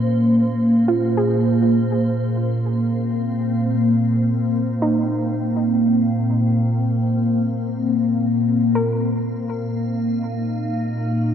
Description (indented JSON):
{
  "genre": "ambient",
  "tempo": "free time",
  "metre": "none",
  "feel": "none",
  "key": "Bb minor",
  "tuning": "A4 = 435 Hz",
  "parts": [
    { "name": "glassy FM pad", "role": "sustained chords", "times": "0.0-11.3 s", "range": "Bb2 to F5", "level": "-18 LUFS", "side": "equal", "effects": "ensemble chorus, built-in reverb, phaser" },
    { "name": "soft round pluck", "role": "arpeggios", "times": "0.9-11.3 s", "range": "Eb4 to Bb4", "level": "-26 LUFS", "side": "right 1 dB", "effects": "chorus, ping-pong delay" }
  ],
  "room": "wet lush hall reverb, RT60 2.7 s",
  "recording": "none",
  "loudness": "-17 LUFS",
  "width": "side -8 dB against mid",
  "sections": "0.0-11.3 A section",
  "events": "none",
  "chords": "0.0 Bbmadd9; 7.8 Ebmadd9/Bb"
}